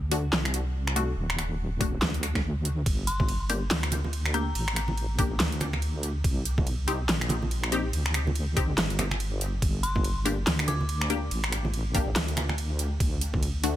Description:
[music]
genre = deep dubstep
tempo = 142 BPM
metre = 4/4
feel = swing 59% on 16ths, half-time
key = G harmonic minor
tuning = A4 = 440 Hz
[part]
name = deep soft wobble bass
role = bass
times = 0.0-13.8 s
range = Eb1 to D2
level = -29 LUFS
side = equal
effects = chorus
[part]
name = filtered dub chord stab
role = stabs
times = 0.1-13.8 s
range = A3 to G4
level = -34 LUFS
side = left 4 dB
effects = phaser, dub echo
[part]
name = dubstep drum kit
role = drums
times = 0.1-13.7 s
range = finger snaps, handclaps, hi-hat, ride cymbal, snare drum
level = -30 LUFS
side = right 1 dB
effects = overdrive
[part]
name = electronic kick drum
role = drums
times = 1.8-13.4 s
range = none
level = -28 LUFS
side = equal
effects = none
[part]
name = dark detuned synth bell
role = melody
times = 3.1-4.9, 9.8-11.3 s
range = Bb5 to D6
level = -37 LUFS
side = left 2 dB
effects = chorus, dub echo
[part]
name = congas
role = percussion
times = 3.2-13.4 s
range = none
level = -34 LUFS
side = right 2 dB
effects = none
[sound]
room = little or no reverb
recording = none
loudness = -25 LUFS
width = side -12 dB against mid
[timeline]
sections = 0.0-13.8 A section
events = none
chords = 0.0 D; 2.9 Gm; 6.2 Cm; 9.6 Gm; 13.0 D

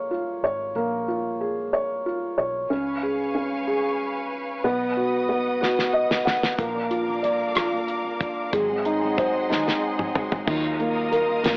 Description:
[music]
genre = six-eight pop ballad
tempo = 62 BPM (dotted quarters)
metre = 6/8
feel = straight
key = unclear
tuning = A4 = 439 Hz
[part]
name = felt-muted upright piano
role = accompaniment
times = 0.0-11.6 s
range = Eb3 to F#5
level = -23 LUFS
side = equal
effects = none
[part]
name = vintage muted fingered electric bass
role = bass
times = 0.0-11.6 s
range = Ab1 to F2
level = -43 LUFS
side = equal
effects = none
[part]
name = clear studio string section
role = sustained chords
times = 2.7-11.6 s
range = Ab4 to D#6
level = -29 LUFS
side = equal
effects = none
[part]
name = damped 70s drum kit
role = drums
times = 5.6-11.6 s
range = crash cymbal, hi-hat, kick drum, rim click, snare drum, toms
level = -25 LUFS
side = equal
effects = cassette tape
[part]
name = fingerpicked steel-string acoustic guitar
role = arpeggios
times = 6.6-11.6 s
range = Ab2 to Bb4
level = -32 LUFS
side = left 1 dB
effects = analog delay
[sound]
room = moderate studio reverb, RT60 0.6 s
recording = home recording on cassette, AM radio sound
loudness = -22 LUFS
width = side -29 dB against mid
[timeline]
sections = 0.0-2.7 A section; 2.7-10.5 B section; 10.5-11.6 C section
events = drum fill 5.6-6.6, 9.5-10.5; felt piano fill 5.6-6.6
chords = 0.0 Bbm7; 2.7 Db7; 4.6 B; 6.6 Bb; 8.5 Ab7; 10.5 Ebmadd9

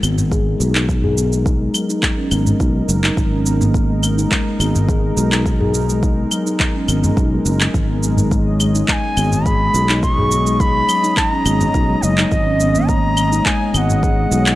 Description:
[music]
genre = organic downtempo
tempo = 105 BPM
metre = 4/4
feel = straight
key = G# minor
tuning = A4 = 440 Hz
[part]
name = warm analog pad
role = sustained chords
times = 0.0-14.6 s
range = G#3 to D#5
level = -26 LUFS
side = equal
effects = chorus, sidechain pumping
[part]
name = steel tongue drum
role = arpeggios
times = 0.0-14.5 s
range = D#3 to G#4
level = -21 LUFS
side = left 1 dB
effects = tape echo
[part]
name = sustaining fretless electric bass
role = bass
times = 0.0-14.6 s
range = F#1 to B1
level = -18 LUFS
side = equal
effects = sidechain pumping
[part]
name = electronic claves, cabasa and handclaps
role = drums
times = 0.0-14.6 s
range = none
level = -21 LUFS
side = equal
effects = none
[part]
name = udu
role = percussion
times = 0.2-14.0 s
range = none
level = -22 LUFS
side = equal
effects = none
[part]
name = electronic kick drum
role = drums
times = 0.3-14.2 s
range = none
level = -19 LUFS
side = equal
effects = none
[part]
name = bright reedy bansuri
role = melody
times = 8.9-14.6 s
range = D#5 to C#6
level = -19 LUFS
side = equal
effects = tape echo
[sound]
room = studio reverb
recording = dry, gritty hardware recording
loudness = -14 LUFS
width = side -16 dB against mid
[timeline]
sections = 0.0-14.6 A section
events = none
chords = 0.0 G#m7

